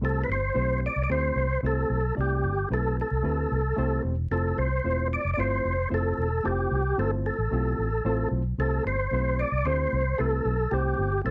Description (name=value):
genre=uptempo 1960s-style soul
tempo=112 BPM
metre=4/4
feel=straight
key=C major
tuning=A4 = 440 Hz
part: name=percussive tonewheel organ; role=melody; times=0.0-11.3 s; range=G4 to D5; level=-30 LUFS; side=equal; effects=chorus vibrato, fast rotary speaker
part: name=reed electric piano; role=accompaniment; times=0.0-11.3 s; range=A3 to D5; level=-34 LUFS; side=equal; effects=none
part: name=vintage muted fingered electric bass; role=bass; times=0.0-11.3 s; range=E1 to D2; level=-30 LUFS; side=equal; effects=none
room=light reverb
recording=vinyl crackle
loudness=-27 LUFS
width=mono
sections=0.0-11.3 A section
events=none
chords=0.0 C6; 4.3 Fmaj7; 8.6 C6